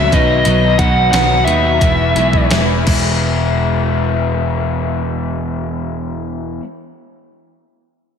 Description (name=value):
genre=indie rock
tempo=81-92 BPM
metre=4/4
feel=straight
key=E major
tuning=A4 = 440 Hz
part: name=dark smooth lead guitar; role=melody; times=0.0-2.5 s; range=D#5 to F#5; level=-16 LUFS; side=equal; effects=overdrive, diffuse ambient delay
part: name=raw garage guitar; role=riff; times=0.0-6.6 s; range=B2 to B4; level=-20 LUFS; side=left 8 dB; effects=overdrive
part: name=twelve-string electric guitar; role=riff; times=0.0-6.6 s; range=B2 to E4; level=-22 LUFS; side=right 6 dB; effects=lush chorus, diffuse ambient delay
part: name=picked electric bass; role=bass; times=0.0-6.6 s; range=E1 to D#2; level=-18 LUFS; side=equal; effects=none
part: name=crisp 8-bit digital drum machine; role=drums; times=0.1-3.0 s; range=crash cymbal, hi-hat, kick drum, snare drum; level=-18 LUFS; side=equal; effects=none
room=moderate lush hall reverb, RT60 2.4 s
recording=dreamy mix soaked in reverb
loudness=-13 LUFS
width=side -7 dB against mid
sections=0.0-3.2 A section; 3.2-6.2 B section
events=slowing down 0.0-3.2; drum fill 2.9-3.2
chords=0.1 B; 1.8 E